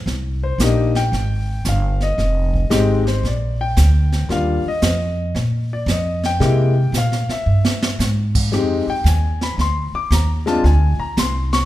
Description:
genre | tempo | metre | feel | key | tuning
jazz, small-group swing and bop | 113 BPM | 4/4 | swing 67% on 8ths | C minor | A4 = 440 Hz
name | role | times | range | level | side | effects
upright bass | bass | 0.0-11.7 s | F1 to C3 | -18 LUFS | equal | none
jazz brush drum kit | drums | 0.1-11.7 s | brushed snare drum, crash cymbal, hi-hat, kick drum, snare drum | -24 LUFS | right 2 dB | none
warm concert grand piano | accompaniment | 0.4-11.7 s | G3 to D6 | -22 LUFS | left 3 dB | none
room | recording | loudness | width
moderate recital hall reverb, RT60 1.4 s | recorded in a church or concert hall | -16 LUFS | side -14 dB against mid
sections
0.1-11.7 A section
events
drum fill 7.5-8.0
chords
0.1 Cm7; 2.2 Fm7; 3.2 Bb6; 4.3 Ebmaj9; 6.4 C7b13; 8.5 Fm9; 10.6 Bb9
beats
| 0.07 0.60 1.12 1.65 | 2.18 2.71 3.24 3.77 | 4.30 4.83 5.36 5.88 | 6.41 6.94 7.47 8.00 | 8.53 9.06 9.59 10.12 | 10.64 11.17

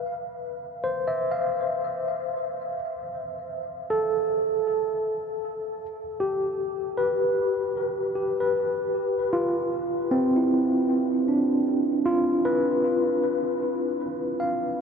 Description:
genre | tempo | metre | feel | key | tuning
ambient | 78 BPM | 4/4 | straight | unclear | A4 = 437 Hz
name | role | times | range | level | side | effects
overdriven tine electric piano | solo | 0.0-14.8 s | C4 to F5 | -23 LUFS | equal | medium tremolo, ping-pong delay
room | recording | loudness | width
wet huge ambient reverb, RT60 8.9 s | dreamy mix soaked in reverb, cassette tape | -23 LUFS | side -6 dB against mid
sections
0.0-9.0 A section; 9.0-14.8 B section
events
none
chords
0.0 F5; 2.8 N.C.; 5.8 G; 9.0 G7sus4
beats
0.46 1.23 1.99 | 2.76 3.52 4.29 5.06 | 5.83 6.60 7.37 8.17 | 8.96 9.74 10.52 11.30 | 12.07 12.85 13.63 14.40

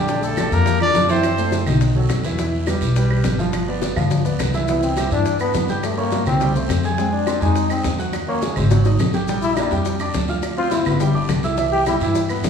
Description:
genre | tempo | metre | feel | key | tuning
Afro-Cuban jazz | 209 BPM | 4/4 | straight | C major | A4 = 441 Hz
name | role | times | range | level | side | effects
breathy trumpet | melody | 0.0-1.5 s | G4 to D5 | -21 LUFS | equal | none
bright trombone | second line | 0.0-1.5, 4.7-12.0 s | G3 to G4 | -23 LUFS | left 3 dB | none
warm baby grand piano | accompaniment | 0.0-12.5 s | D3 to Ab6 | -23 LUFS | right 3 dB | none
upright bass | bass | 0.0-12.5 s | G1 to G2 | -22 LUFS | left 1 dB | none
bongos | percussion | 0.1-12.5 s | none | -28 LUFS | left 4 dB | none
congas | percussion | 0.1-12.5 s | none | -26 LUFS | left 1 dB | none
guiro | percussion | 0.1-12.5 s | none | -36 LUFS | right 4 dB | none
maracas | percussion | 0.1-12.5 s | none | -37 LUFS | left 6 dB | none
claves | percussion | 0.4-12.4 s | none | -36 LUFS | right 5 dB | none
room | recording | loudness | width
wet recital hall reverb, RT60 1.4 s | recorded in a church or concert hall, studio reverb | -17 LUFS | side -7 dB against mid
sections
0.0-4.7 A section; 4.7-12.5 B section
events
trombone solo 4.7-12.5; drum fill 8.7-9.3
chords
0.1 Bb6; 1.2 F#m7b5; 1.8 B7; 2.4 Em; 3.5 G7; 4.7 Cmaj9; 5.8 Gdim; 6.4 C5; 7.0 Fm7; 8.1 Ebm7; 8.7 Absus2; 9.3 Bb6; 10.4 Dm7; 11.0 G5; 11.6 Cmaj7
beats
| 0.08 0.37 0.66 0.95 | 1.24 1.52 1.81 2.10 | 2.39 2.67 2.96 3.25 | 3.54 3.82 4.11 4.40 | 4.68 4.97 5.26 5.55 | 5.83 6.12 6.41 6.70 | 6.99 7.27 7.56 7.85 | 8.13 8.42 8.71 9.00 | 9.28 9.57 9.86 10.14 | 10.43 10.72 11.01 11.29 | 11.58 11.87 12.15 12.44

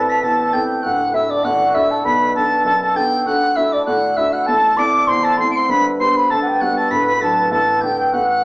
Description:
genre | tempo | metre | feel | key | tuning
celtic folk, Celtic reel | 198 BPM | 4/4 | swing 54% on 8ths | unclear | A4 = 437 Hz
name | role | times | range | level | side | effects
baroque flute | melody | 0.0-8.4 s | D5 to D6 | -16 LUFS | equal | none
bright tin whistle | second line | 0.0-8.4 s | D6 to D7 | -24 LUFS | left 1 dB | none
cimbalom | second line | 0.0-8.4 s | D4 to D5 | -22 LUFS | right 1 dB | none
dark upright piano | accompaniment | 0.0-8.4 s | D1 to A4 | -22 LUFS | equal | none
room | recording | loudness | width
wet large studio reverb, RT60 0.9 s | band playing live in one room, small speaker sound | -14 LUFS | side -25 dB against mid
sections
0.0-8.4 A section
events
none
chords
0.0 Am; 0.8 D; 2.0 Bm7; 3.3 D; 4.5 Am; 5.7 G; 6.9 D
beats
0.23 0.53 | 0.83 1.14 1.44 1.74 | 2.05 2.35 2.65 2.96 | 3.26 3.57 3.87 4.17 | 4.48 4.78 5.08 5.39 | 5.69 6.00 6.30 6.60 | 6.91 7.21 7.51 7.82 | 8.12 8.42

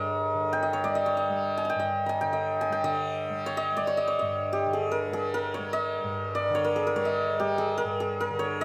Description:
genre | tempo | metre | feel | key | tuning
indian classical, Hindustani | 144 BPM | 7/4 | straight | G raga todi | A4 = 444 Hz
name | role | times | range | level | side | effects
santur | melody | 0.0-8.6 s | G4 to Bb5 | -28 LUFS | equal | none
tanpura | drone | 0.0-8.6 s | G2 to G3 | -38 LUFS | equal | none
room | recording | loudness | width
light reverb | close, detailed microphones | -28 LUFS | mono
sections
0.0-2.8 A section; 2.8-8.6 B section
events
speeding up 0.0-8.6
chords
none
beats
0.31 0.73 1.15 1.57 1.99 2.41 | 2.83 3.25 3.66 4.08 4.49 4.91 5.32 | 5.74 6.15 6.56 6.97 7.38 7.79 8.20 | 8.61

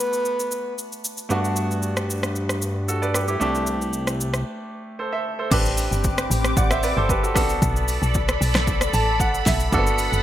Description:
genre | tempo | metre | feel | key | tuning
amapiano | 114 BPM | 4/4 | straight | A dorian | A4 = 439 Hz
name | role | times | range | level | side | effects
breathy flute-like synth lead | melody | 0.0-0.7 s | B4 | -26 LUFS | equal | chorus, digital delay
bright grand piano | accompaniment | 0.0-10.2 s | A3 to A5 | -25 LUFS | right 2 dB | none
deep house drum kit | drums | 0.0-10.2 s | crash cymbal, hi-hat, kick drum, rim click, shaker, snare drum | -24 LUFS | equal | overdrive
fat analog bass | bass | 1.3-4.4 s | C2 to G2 | -25 LUFS | equal | none
lush unison pad | sustained chords | 5.5-10.2 s | C4 to D6 | -26 LUFS | left 1 dB | chorus, phaser, sidechain pumping
deep log drum bass | bass | 5.5-10.2 s | F#1 to B1 | -23 LUFS | equal | none
room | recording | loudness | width
moderate plate reverb, RT60 2.4 s | bright 1980s-style digital production | -20 LUFS | side -12 dB against mid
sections
0.0-5.5 A section; 5.5-10.2 B section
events
break 4.5-5.5; drop 5.5-10.2; grand piano fill 8.7-9.7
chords
0.0 Bm7; 1.3 Gmaj9; 3.4 C6; 5.5 Am11; 7.4 Bm7; 9.7 Gmaj9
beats
0.25 0.78 | 1.30 1.83 2.36 2.88 | 3.41 3.94 4.46 4.99 | 5.51 6.04 6.57 7.09 | 7.62 8.15 8.67 9.20 | 9.72

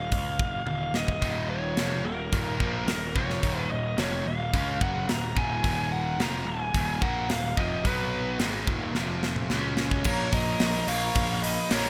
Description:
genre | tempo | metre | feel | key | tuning
hard rock | 109 BPM | 4/4 | straight | Eb minor | A4 = 442 Hz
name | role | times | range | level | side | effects
bluesy overdriven lead guitar | melody | 0.0-11.9 s | Bb4 to Bb5 | -34 LUFS | equal | distortion
fuzz picked electric bass | bass | 0.0-11.9 s | Eb1 to Db2 | -35 LUFS | equal | overdrive
tight metal drum kit | drums | 0.1-11.8 s | crash cymbal, hi-hat, kick drum, snare drum, toms | -32 LUFS | equal | gated reverb
overdriven semi-hollow guitar | riff | 1.2-11.9 s | Eb2 to Db4 | -37 LUFS | equal | analog chorus
sludgy distorted guitar | riff | 1.2-11.9 s | Eb2 to Db4 | -36 LUFS | equal | overdrive
octave-fuzz lead guitar | second line | 10.1-11.9 s | Bb4 to Db5 | -36 LUFS | equal | distortion
room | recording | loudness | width
moderate lush hall reverb, RT60 2.5 s | bright 1980s-style digital production | -28 LUFS | mono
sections
0.0-10.1 A section; 10.1-11.9 B section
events
drum fill 0.7-1.2, 9.0-10.1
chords
0.0 Ebm; 7.8 B5; 8.4 Eb5; 9.0 F5; 9.5 Db5; 10.1 Bbm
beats
0.13 0.68 | 1.23 1.78 2.33 2.88 | 3.43 3.98 4.53 5.09 | 5.64 6.19 6.74 7.29 | 7.85 8.40 8.95 9.50 | 10.06 10.61 11.16 11.71

